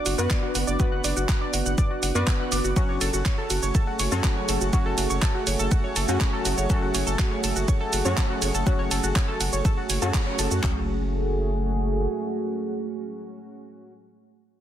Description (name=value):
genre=melodic techno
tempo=122 BPM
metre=4/4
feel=straight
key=F# minor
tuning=A4 = 441 Hz
part: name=dark analog pad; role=sustained chords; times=0.0-13.9 s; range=A3 to G#4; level=-30 LUFS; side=right 2 dB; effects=chorus, sidechain pumping
part: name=warbly dusty pluck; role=arpeggios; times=0.0-10.9 s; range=F#4 to F#6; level=-30 LUFS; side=equal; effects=chorus, sidechain pumping, digital delay
part: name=synth brass stab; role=stabs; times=0.0-13.9 s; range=F#3 to B4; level=-31 LUFS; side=left 2 dB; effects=chorus, sidechain pumping, digital delay
part: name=round analog bass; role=bass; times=0.1-12.1 s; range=F#1 to F#2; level=-27 LUFS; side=equal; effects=sidechain pumping
part: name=house drum kit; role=drums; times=0.1-10.6 s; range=handclaps, hi-hat, ride cymbal, shaker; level=-29 LUFS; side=right 3 dB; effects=soft clipping on snare
part: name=house drum kit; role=drums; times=0.3-10.7 s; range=handclaps, kick drum, toms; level=-24 LUFS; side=equal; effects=soft clipping on snare
room=light reverb, digital ambience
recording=dense, heavily limited modern master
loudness=-22 LUFS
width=side -11 dB against mid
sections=0.0-10.6 A section; 10.6-14.6 B section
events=drop 0.0-10.6; band accent 10.1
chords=0.0 Bm/F#; 2.8 F#madd9